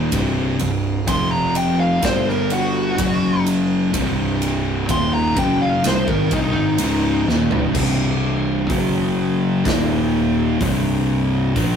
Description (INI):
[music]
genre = stoner and doom metal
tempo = 63 BPM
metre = 4/4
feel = straight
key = C phrygian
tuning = A4 = 440 Hz
[part]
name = overdriven electric guitar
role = riff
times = 0.0-11.8 s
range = C2 to Bb3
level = -26 LUFS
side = equal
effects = none
[part]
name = thick fuzz guitar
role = riff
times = 0.0-11.8 s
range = C2 to Bb3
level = -22 LUFS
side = left 4 dB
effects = distortion
[part]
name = thick fuzz guitar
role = riff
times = 0.0-11.8 s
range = C2 to Bb3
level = -22 LUFS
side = right 2 dB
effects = distortion
[part]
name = fuzz fingered electric bass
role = bass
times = 0.0-11.8 s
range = C1 to Bb1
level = -26 LUFS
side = right 1 dB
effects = overdrive
[part]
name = big rock drum kit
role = drums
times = 0.1-11.8 s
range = crash cymbal, hi-hat, kick drum, ride cymbal, snare drum, toms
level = -25 LUFS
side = right 1 dB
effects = none
[part]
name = fuzz lead guitar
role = melody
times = 1.1-7.2 s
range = Eb4 to C6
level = -21 LUFS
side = left 1 dB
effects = wah, distortion
[sound]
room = moderate small room reverb, RT60 0.6 s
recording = rough rehearsal-room recording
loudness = -16 LUFS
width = side -7 dB against mid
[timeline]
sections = 0.0-7.8 A section; 7.8-11.8 B section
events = lead electric guitar solo 0.0-7.8; drum fill 7.3-7.8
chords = 0.1 C5; 1.1 F5; 2.0 G5; 3.0 F#5; 3.9 Cm; 7.8 C5; 8.7 F#5; 9.7 Eb5; 10.6 C5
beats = | 0.12 1.07 2.03 2.98 | 3.94 4.89 5.84 6.80 | 7.75 8.71 9.66 10.61 | 11.56